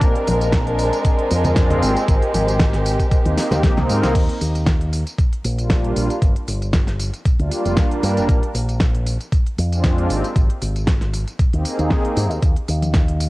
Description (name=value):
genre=nu-disco, nu disco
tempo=116 BPM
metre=4/4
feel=swing 54% on 16ths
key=unclear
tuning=A4 = 438 Hz
part: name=muted studio violin section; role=sustained chords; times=0.0-4.1 s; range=Ab3 to Bb4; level=-21 LUFS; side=equal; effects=sidechain pumping
part: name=fingered electric bass with an envelope filter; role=bass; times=0.0-13.3 s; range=F1 to Ab2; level=-21 LUFS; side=equal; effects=sidechain pumping
part: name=electronic kick drum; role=drums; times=0.0-13.1 s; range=none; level=-17 LUFS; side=equal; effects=cassette tape
part: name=pop drum kit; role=drums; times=0.0-13.3 s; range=crash cymbal, hi-hat, snare drum, tambourine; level=-25 LUFS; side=equal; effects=cassette tape
part: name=congas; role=percussion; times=0.3-3.9, 12.8-12.9 s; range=none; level=-25 LUFS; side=left 1 dB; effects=none
room=light reverb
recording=home recording on cassette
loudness=-16 LUFS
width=side -19 dB against mid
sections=0.0-4.2 A section; 4.2-13.3 B section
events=drop 0.0-4.2; drum fill 3.4-4.2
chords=0.0 Bb9; 1.8 Abmaj9; 4.2 Ebmaj9; 6.2 Gm7; 8.3 Bb9; 10.1 Abmaj9; 12.4 N.C.